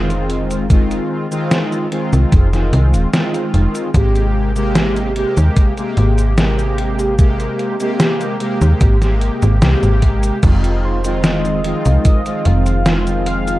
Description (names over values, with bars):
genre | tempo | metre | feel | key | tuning
vaporwave | 74 BPM | 4/4 | straight | F minor | A4 = 440 Hz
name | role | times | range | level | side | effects
mellow synth brass | accompaniment | 0.0-13.6 s | C3 to G4 | -18 LUFS | equal | lush chorus, tape echo
slap-like FM bass | bass | 0.0-13.6 s | Eb1 to Eb2 | -15 LUFS | equal | none
detuned 8-bit digital drum machine | drums | 0.1-13.6 s | cabasa, crash cymbal, hi-hat, snare drum | -20 LUFS | equal | none
electronic kick drum | drums | 0.7-12.2 s | none | -13 LUFS | equal | none
warbly tape-like pad | sustained chords | 10.4-13.6 s | F3 to Ab4 | -29 LUFS | right 3 dB | chorus, built-in reverb, phaser
warm velvety synth lead | melody | 10.8-13.6 s | C5 to F5 | -23 LUFS | equal | chorus
room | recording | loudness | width
little or no reverb | dark, warm production | -13 LUFS | side -17 dB against mid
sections
0.0-13.6 A section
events
none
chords
0.0 Fm7; 3.9 Abmaj9; 10.4 Fm7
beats
| 0.70 1.51 2.32 3.13 | 3.94 4.75 5.57 6.38 | 7.19 8.00 8.81 9.62 | 10.43 11.24 12.05 12.86